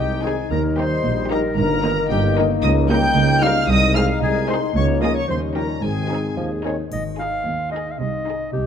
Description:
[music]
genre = cinematic, playful, whimsical film cue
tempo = 112 BPM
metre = 2/4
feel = straight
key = Ab major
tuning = A4 = 440 Hz
[part]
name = muted chamber violin section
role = melody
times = 0.0-8.5 s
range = G5 to G6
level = -26 LUFS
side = equal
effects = none
[part]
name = bright concert flute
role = second line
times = 0.0-6.4 s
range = G4 to G5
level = -27 LUFS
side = left 2 dB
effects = none
[part]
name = dark clarinet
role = second line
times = 0.0-8.7 s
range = G4 to G5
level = -26 LUFS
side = equal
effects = none
[part]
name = mellow French horn section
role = sustained chords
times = 0.0-6.6 s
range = G3 to Eb4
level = -26 LUFS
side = left 6 dB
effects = none
[part]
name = concert harp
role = arpeggios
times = 0.0-8.7 s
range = G2 to Bb5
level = -27 LUFS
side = left 12 dB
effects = none
[part]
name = mellow tuba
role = bass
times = 0.0-6.8 s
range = G1 to Eb2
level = -26 LUFS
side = right 4 dB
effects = none
[part]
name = muted chamber cello section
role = bass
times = 0.0-8.7 s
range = C2 to C3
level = -27 LUFS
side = right 3 dB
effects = none
[part]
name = muted studio double bass section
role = bass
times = 0.0-8.7 s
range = G1 to Eb2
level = -25 LUFS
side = right 3 dB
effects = none
[part]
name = muted chamber violin section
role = second line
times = 0.2-8.5 s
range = Eb4 to Bb4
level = -30 LUFS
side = left 3 dB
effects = none
[part]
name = muted studio viola section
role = accompaniment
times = 0.2-8.5 s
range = Eb3 to Eb4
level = -29 LUFS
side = right 1 dB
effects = none
[part]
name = warm bassoon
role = accompaniment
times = 6.4-6.8 s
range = Eb3 to F3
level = -32 LUFS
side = right 1 dB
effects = none
[part]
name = triangle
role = percussion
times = 6.9-8.0 s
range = none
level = -47 LUFS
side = left 6 dB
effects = none
[sound]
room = light reverb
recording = close, detailed microphones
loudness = -17 LUFS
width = side -8 dB against mid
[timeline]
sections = 0.0-6.9 A section; 6.9-8.7 B section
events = none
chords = 0.0 Ab/C; 0.5 Eb; 1.6 Eb/G; 2.6 Eb7/Db; 3.7 Ab/C; 4.8 Bbm7/Db; 5.3 Eb9; 5.8 Ab; 8.0 Ab/C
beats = | 0.50 1.04 | 1.57 2.10 | 2.63 3.16 | 3.69 4.22 | 4.76 5.29 | 5.83 6.38 | 6.92 7.46 | 7.99 8.53

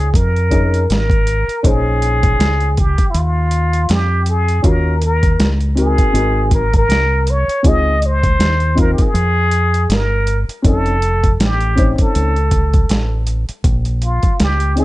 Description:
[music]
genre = hip hop, jazz-hop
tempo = 80 BPM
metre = 4/4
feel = swing 57% on 16ths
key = Bb dorian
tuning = A4 = 444 Hz
[part]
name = trumpet with plunger mute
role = melody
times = 0.0-14.8 s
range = E4 to Eb5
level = -19 LUFS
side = equal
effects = none
[part]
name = dark concert grand piano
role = accompaniment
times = 0.0-14.8 s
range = C4 to C5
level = -20 LUFS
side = left 2 dB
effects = none
[part]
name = deep dub fingered electric bass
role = bass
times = 0.0-14.8 s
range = F1 to F2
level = -16 LUFS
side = equal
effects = none
[part]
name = dusty soul sampler-style drum kit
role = drums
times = 0.1-14.8 s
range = hi-hat, kick drum, snare drum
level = -16 LUFS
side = equal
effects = overdrive
[sound]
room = small room ambience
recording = dark, warm production, nothing above 10.5 kHz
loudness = -12 LUFS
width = side -17 dB against mid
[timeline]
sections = 0.0-1.6 A section; 1.6-13.6 B section; 13.6-14.8 C section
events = muted trumpet solo 13.6-14.8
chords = 0.0 Bbm11; 4.6 Ebm9; 6.1 Ab9; 7.6 Dbmaj9; 10.6 F7b13; 13.6 Bbm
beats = 0.14 0.89 | 1.64 2.39 3.14 3.89 | 4.64 5.39 6.14 6.89 | 7.64 8.39 9.14 9.89 | 10.64 11.39 12.14 12.89 | 13.64 14.39

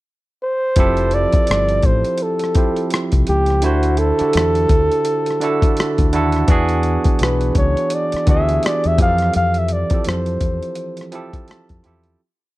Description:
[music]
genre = R&B, neo-soul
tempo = 84 BPM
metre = 4/4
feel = swing 60% on 16ths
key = F major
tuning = A4 = 441 Hz
[part]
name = dark flugelhorn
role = melody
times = 0.4-11.1 s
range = F#4 to F5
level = -19 LUFS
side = equal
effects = slapback echo
[part]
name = barky tine electric piano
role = accompaniment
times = 0.8-12.2 s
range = D3 to A5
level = -21 LUFS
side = right 3 dB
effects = none
[part]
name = fingered electric bass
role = bass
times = 0.8-12.1 s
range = F1 to F2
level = -19 LUFS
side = left 1 dB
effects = none
[part]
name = dusty soul sampler-style drum kit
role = drums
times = 0.8-12.2 s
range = hi-hat, kick drum, rim click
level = -18 LUFS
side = left 1 dB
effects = overdrive
[sound]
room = digital ambience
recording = dry, close 1970s-style studio recording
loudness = -14 LUFS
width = side -18 dB against mid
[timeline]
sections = 0.0-0.8 pickup bar; 0.8-12.2 A section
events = fade-out 9.3-12.2; tine electric piano fill 11.1-12.2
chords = 0.0 N.C.; 0.8 Fmaj9; 3.6 D7; 6.5 E7; 9.0 Fmaj9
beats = 0.05 | 0.77 1.48 2.19 2.91 | 3.62 4.34 5.05 5.76 | 6.48 7.19 7.91 8.62 | 9.34 10.05 10.77 11.48

